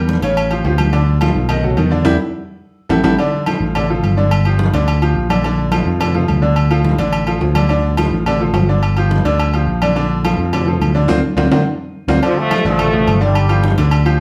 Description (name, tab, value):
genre	latin, salsa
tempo	212 BPM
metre	4/4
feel	straight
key	D minor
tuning	A4 = 440 Hz
part	bright baby grand piano	accompaniment	0.0-14.2 s	C#3 to D#5	-21 LUFS	equal	none
part	picked electric bass	bass	0.0-14.2 s	G1 to F2	-18 LUFS	equal	none
part	congas	percussion	0.1-14.2 s	none	-24 LUFS	equal	none
part	agogo bells and timbales	percussion	0.2-14.2 s	none	-25 LUFS	equal	none
part	brilliant trombone section	melody	12.2-13.6 s	D3 to A3	-20 LUFS	equal	none
room	wet studio reverb, RT60 0.8 s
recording	heard from further back in the room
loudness	-15 LUFS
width	mono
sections	0.0-3.2 A section; 3.2-12.2 B section; 12.2-14.2 C section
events	band accent 2.1-3.2, 11.1-12.2; drum fill 2.8-3.2, 11.7-12.2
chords	0.4 Aaug7; 0.9 Dm; 1.5 B7; 2.1 Em7; 2.6 A5; 3.2 Dm; 4.3 Gm7; 5.4 Bbmaj7; 6.6 Dm; 8.8 Gm7; 10.0 Bbmaj7; 11.1 Dm7; 12.2 Dm; 13.4 G7(no3)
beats	0.09 0.37 0.65 | 0.94 1.22 1.50 1.78 | 2.06 2.34 2.62 2.91 | 3.19 3.47 3.75 4.03 | 4.32 4.60 4.88 5.16 | 5.44 5.72 6.01 6.29 | 6.57 6.85 7.13 7.42 | 7.70 7.98 8.27 8.55 | 8.83 9.11 9.40 9.68 | 9.96 10.24 10.53 10.81 | 11.09 11.38 11.66 11.94 | 12.23 12.51 12.79 13.07 | 13.36 13.64 13.92